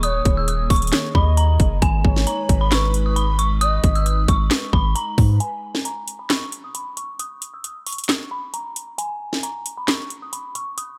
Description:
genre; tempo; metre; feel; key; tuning
hip hop, trap; 134 BPM; 4/4; half-time; G# minor; A4 = 441 Hz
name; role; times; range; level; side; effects
dark detuned synth bell; melody; 0.0-11.0 s; G#5 to E6; -28 LUFS; equal; chorus, low-pass filter
gliding portamento lead; second line; 0.0-4.0 s; B4 to D#5; -32 LUFS; equal; chorus, tape echo
airy breathy pad; sustained chords; 0.0-5.4 s; D#3 to B4; -34 LUFS; equal; chorus, phaser
long sustained 808-style bass; bass; 0.0-5.4 s; D#1 to G#2; -21 LUFS; equal; none
trap drum kit; drums; 0.0-10.9 s; handclaps, hi-hat, kick drum, snare drum; -22 LUFS; equal; overdrive
room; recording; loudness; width
little or no reverb; none; -20 LUFS; mono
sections
0.0-5.4 A section; 5.4-11.0 B section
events
break 5.4-11.0; filter sweep on synth bell 5.4-11.0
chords
0.0 D#sus4; 1.8 G#m; 5.4 N.C.

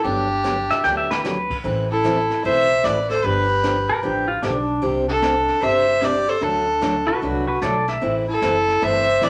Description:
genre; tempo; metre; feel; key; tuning
country, western swing; 150 BPM; 4/4; swing 65% on 8ths; G major; A4 = 440 Hz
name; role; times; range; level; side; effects
rich fiddle; melody; 0.0-9.3 s; G4 to E5; -23 LUFS; equal; none
bright clarinet; second line; 0.0-9.3 s; D4 to C5; -27 LUFS; equal; none
picked steel-string acoustic guitar; accompaniment; 0.0-9.3 s; C3 to B4; -28 LUFS; equal; none
upright bass; bass; 0.0-9.3 s; F#1 to D2; -31 LUFS; equal; none
jazz brush drum kit; drums; 0.0-9.3 s; brushed snare drum, crash cymbal, hi-hat, kick drum, snare drum; -35 LUFS; equal; none
pedal steel guitar; second line; 0.7-8.1 s; D4 to G5; -24 LUFS; equal; none
room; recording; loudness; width
wet small room reverb, RT60 0.5 s; none; -20 LUFS; mono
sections
0.0-1.6 A section; 1.6-9.3 B section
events
drum fill 0.4-1.2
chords
0.0 Gmaj7; 1.6 Amadd9; 3.2 G7; 4.8 Csus2; 6.4 D; 8.0 Amadd9

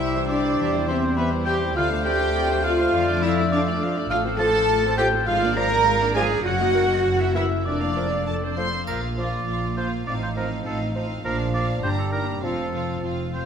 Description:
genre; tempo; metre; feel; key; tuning
cinematic, playful, whimsical film cue; 102 BPM; 2/4; straight; Bb major from 4.1 s; A4 = 439 Hz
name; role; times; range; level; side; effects
glockenspiel with rubber mallets; melody; 0.0-8.5 s; B5 to Bb6; -30 LUFS; left 3 dB; none
warm studio violin section; melody; 0.0-13.5 s; A4 to C6; -34 LUFS; left 2 dB; none
clear clarinet; second line; 0.0-13.3 s; D4 to D5; -35 LUFS; left 2 dB; none
mellow flute section; second line; 0.0-8.6 s; B4 to Bb5; -30 LUFS; right 5 dB; none
rich studio violin section; second line; 0.0-13.5 s; D4 to Bb5; -33 LUFS; right 1 dB; none
warm oboe; second line; 0.0-13.5 s; A4 to Bb5; -31 LUFS; right 2 dB; none
mellow bassoon; accompaniment; 0.0-13.3 s; Eb3 to A3; -32 LUFS; right 2 dB; none
warm studio viola section; accompaniment; 0.0-13.5 s; E3 to D5; -32 LUFS; right 3 dB; none
dark French horn section; sustained chords; 0.0-13.3 s; F3 to Bb4; -28 LUFS; left 4 dB; none
concert harp; arpeggios; 0.0-13.5 s; F2 to C6; -31 LUFS; left 8 dB; none
dark chamber cello section; bass; 0.0-13.5 s; Eb2 to Bb4; -28 LUFS; right 3 dB; none
rich studio double bass section; bass; 0.0-13.5 s; F1 to F2; -29 LUFS; right 2 dB; none
triangle; percussion; 8.9-10.0 s; none; -48 LUFS; left 2 dB; none
room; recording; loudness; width
moderate scoring stage reverb, RT60 1.7 s; none; -20 LUFS; side -7 dB against mid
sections
0.0-8.9 A section; 8.9-13.5 B section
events
none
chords
0.0 C; 0.6 C/E; 1.8 Dm7; 2.9 Dm/F; 4.1 F/A; 5.3 Bb7/Ab; 6.5 Ebm/Gb; 7.1 Gb7; 7.7 Bb/F; 8.3 F; 8.9 Bb; 10.1 F7/A; 11.2 Bb; 11.8 Gm; 12.4 F

